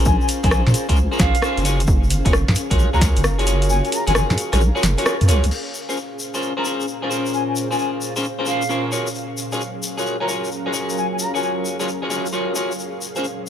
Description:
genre	UK garage, two-step garage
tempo	132 BPM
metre	4/4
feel	swing 67% on 16ths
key	Bb minor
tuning	A4 = 442 Hz
part	ethereal airy pad	sustained chords	0.0-13.5 s	Bb2 to F5	-29 LUFS	equal	ensemble chorus, built-in reverb, tremolo, vintage 12-bit sampler grit, sidechain pumping
part	electric guitar at the edge of break-up	stabs	0.0-13.2 s	Db4 to Db5	-24 LUFS	left 1 dB	wide subtle chorus, dub echo
part	deep soft wobble bass	bass	0.0-5.5 s	Gb1 to Bb2	-18 LUFS	equal	chorus
part	mellow concert flute	melody	0.1-11.5 s	F5 to Bb5	-28 LUFS	left 2 dB	dub echo
part	electronic kick drum	drums	0.1-3.1 s	none	-19 LUFS	equal	none
part	tube shaker	percussion	0.1-13.5 s	none	-30 LUFS	left 4 dB	none
part	punchy analog drum machine	drums	0.3-5.6 s	crash cymbal, hi-hat, rim click, snare drum	-23 LUFS	equal	none
room	light reverb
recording	none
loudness	-18 LUFS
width	side -9 dB against mid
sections	0.0-5.5 A section; 5.5-13.5 B section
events	kick drops out 3.7-5.5; band accent 5.1; filter sweep on ambient pad 5.5-13.5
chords	0.0 Bbm9; 1.6 Gbmaj9; 5.5 Bbm9; 8.9 Gbmaj9; 12.8 Bbm9

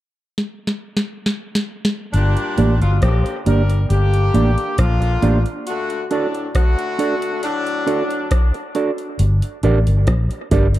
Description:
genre	dub reggae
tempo	68 BPM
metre	4/4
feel	straight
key	G harmonic minor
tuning	A4 = 440 Hz
part	booming analog drum machine	drums	0.4-10.8 s	hi-hat, kick drum, rim click, snare drum	-20 LUFS	equal	none
part	clear horn section	second line	2.1-8.3 s	A2 to Bb4	-23 LUFS	left 2 dB	dub echo
part	vintage muted fingered electric bass	bass	2.1-10.8 s	G1 to Bb1	-16 LUFS	equal	none
part	mellow electric guitar	accompaniment	2.6-10.7 s	Bb3 to D5	-22 LUFS	right 4 dB	low-pass filter, dub echo
part	bongos	percussion	10.1-10.7 s	none	-24 LUFS	right 2 dB	none
room	moderate spring reverb, RT60 2.2 s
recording	dark, warm production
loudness	-16 LUFS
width	side -15 dB against mid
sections	0.0-2.1 A section; 2.1-9.2 B section; 9.2-10.8 C section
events	drum fill 0.4-2.1; filter sweep on clean electric guitar 2.1-9.2; break 5.7-9.2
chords	0.0 N.C.; 2.1 Gm; 5.7 D; 9.2 Gm

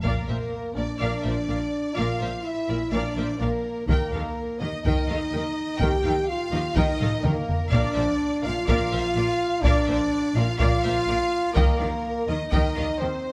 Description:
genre	cinematic, epic orchestral film score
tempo	125 BPM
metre	4/4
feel	straight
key	unclear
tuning	A4 = 438 Hz
part	rich chamber violin section	melody	0.0-13.1 s	D5 to G5	-38 LUFS	equal	none
part	warm symphonic violin section	second line	0.0-13.3 s	Bb4 to G5	-34 LUFS	equal	none
part	rich symphonic viola section	accompaniment	0.0-13.1 s	G4 to Eb5	-36 LUFS	equal	none
part	rich symphonic cello section	bass	0.0-13.1 s	Bb2 to Eb3	-33 LUFS	equal	none
part	rich symphonic double bass section	bass	0.0-13.1 s	Bb1 to Eb2	-33 LUFS	equal	none
part	taiko ensemble	drums	0.0-1.0, 3.9-13.0 s	none	-28 LUFS	equal	none
part	warm French horn section	sustained chords	0.1-13.3 s	Bb3 to G4	-30 LUFS	equal	none
room	moderate concert hall reverb, RT60 1.8 s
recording	none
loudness	-25 LUFS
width	mono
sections	0.0-13.3 A section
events	drum fill 7.0-7.7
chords	0.0 Bb; 3.9 Eb; 7.7 Bb; 11.6 Eb

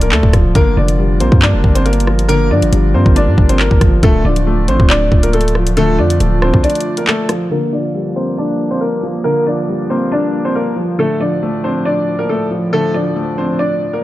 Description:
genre	hip hop, drill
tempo	138 BPM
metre	4/4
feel	half-time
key	G minor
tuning	A4 = 440 Hz
part	clear upright piano	melody	0.0-14.0 s	A3 to D5	-17 LUFS	left 1 dB	low-pass filter
part	dark concert grand piano	accompaniment	0.0-14.0 s	D3 to D5	-18 LUFS	left 1 dB	low-pass filter
part	warm woodwind section	sustained chords	0.0-14.0 s	D2 to Bb4	-25 LUFS	right 2 dB	low-pass filter
part	distorted 808-style bass	bass	0.0-6.6 s	D1 to G2	-14 LUFS	equal	distortion
part	drill drum kit	drums	0.0-7.4 s	handclaps, hi-hat, kick drum, rim click	-13 LUFS	equal	none
room	studio reverb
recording	dark, warm production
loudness	-11 LUFS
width	side -15 dB against mid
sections	0.0-7.5 A section; 7.5-14.0 B section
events	break 6.6-7.5; filter sweep 7.5-14.0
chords	0.0 Dm; 0.6 Gm7; 4.0 Dm; 7.5 Gm7; 11.0 Dm

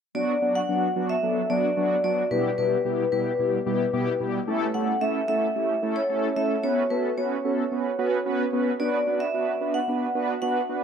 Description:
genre	pop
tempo	111 BPM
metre	4/4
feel	straight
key	B minor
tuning	A4 = 438 Hz
part	vibraphone with medium hard mallets	melody	0.1-10.8 s	B4 to F#5	-26 LUFS	left 1 dB	dub echo
part	mellow synth brass	accompaniment	0.1-10.8 s	B2 to B4	-25 LUFS	right 1 dB	chorus, dub echo
room	moderate plate reverb, RT60 2.9 s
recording	echo-heavy mix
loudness	-22 LUFS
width	side -7 dB against mid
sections	0.1-10.8 A section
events	none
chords	0.1 Bm; 2.3 Em/B; 4.5 A; 6.6 F#sus4; 8.8 Bm

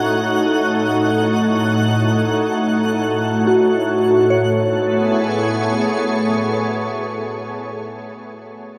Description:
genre	ambient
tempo	free time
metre	none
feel	none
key	A lydian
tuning	A4 = 440 Hz
part	soft additive organ-like pad	sustained chords	0.0-7.6 s	A2 to C#5	-20 LUFS	equal	ensemble chorus, built-in reverb
part	soft synth bell	arpeggios	0.0-8.8 s	F#4 to C#5	-21 LUFS	equal	chorus, delay
part	twinkling granular texture	texture	0.0-4.3 s	F#5 to F#6	-29 LUFS	equal	built-in reverb
room	wet huge ambient reverb, RT60 7.8 s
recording	lossy compression artefacts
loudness	-18 LUFS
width	mono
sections	0.0-4.3 A section; 4.3-6.8 B section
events	none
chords	0.0 F#m/A; 4.3 Amaj7

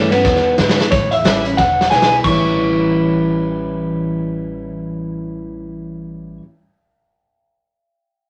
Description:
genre	rockabilly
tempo	180 BPM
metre	4/4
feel	swing 60% on 8ths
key	A mixolydian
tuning	A4 = 440 Hz
part	electric guitar through a small old amp	melody	0.0-6.4 s	A3 to C#6	-18 LUFS	equal	none
part	picked steel-string acoustic guitar	accompaniment	0.0-6.4 s	E2 to E4	-22 LUFS	equal	none
part	upright bass	bass	0.0-6.4 s	E1 to G#2	-28 LUFS	equal	none
part	raw garage drum kit	drums	0.1-2.3 s	crash cymbal, hi-hat, kick drum, ride cymbal, snare drum	-21 LUFS	equal	none
room	moderate studio reverb, RT60 0.6 s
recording	none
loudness	-16 LUFS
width	mono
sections	0.9-2.2 A section; 2.2-4.9 B section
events	drum fill 0.2-0.9, 1.6-2.2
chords	0.2 E7; 0.9 A7; 1.6 E7; 2.2 A7

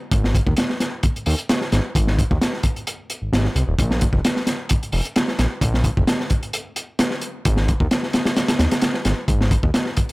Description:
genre	breakbeat, breaks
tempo	131 BPM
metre	4/4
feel	straight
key	unclear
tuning	A4 = 438 Hz
part	fat analog bass	bass	0.1-9.7 s	Eb1 to Eb2	-20 LUFS	equal	none
part	crunchy breakbeat drum kit	drums	0.1-10.1 s	hi-hat, kick drum, snare drum	-19 LUFS	equal	none
room	little or no reverb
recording	none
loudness	-18 LUFS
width	side -22 dB against mid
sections	0.0-10.1 A section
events	none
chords	none

